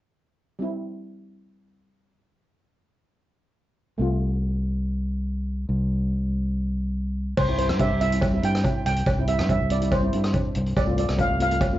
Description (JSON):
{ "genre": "calypso", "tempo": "142 BPM", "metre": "4/4", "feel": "straight", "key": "C major", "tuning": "A4 = 440 Hz", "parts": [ { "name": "steel pan", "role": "accompaniment", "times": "0.6-11.8 s", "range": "G3 to G4", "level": "-30 LUFS", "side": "equal", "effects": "none" }, { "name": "fingered electric bass", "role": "bass", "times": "4.0-11.8 s", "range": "C2 to G2", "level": "-24 LUFS", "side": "equal", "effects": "none" }, { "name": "steel pan", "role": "melody", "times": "7.4-11.8 s", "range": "C5 to G5", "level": "-26 LUFS", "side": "right 2 dB", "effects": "plate reverb, tape echo" }, { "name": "street-band drum kit", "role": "drums", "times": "7.4-11.7 s", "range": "crash cymbal, hi-hat, kick drum, rim click", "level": "-26 LUFS", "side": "equal", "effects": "none" }, { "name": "cowbell", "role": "percussion", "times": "7.4-11.7 s", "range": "none", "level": "-30 LUFS", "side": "right 2 dB", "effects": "none" } ], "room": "light reverb", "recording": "worn, warbling old tape, cassette tape, warbly pitch drift, nothing above 7.6 kHz", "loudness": "-22 LUFS", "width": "side -14 dB against mid", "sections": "0.6-7.4 A section; 7.4-11.8 B section", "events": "none", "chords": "0.6 C; 4.0 F/C; 7.4 C; 10.8 F6/C" }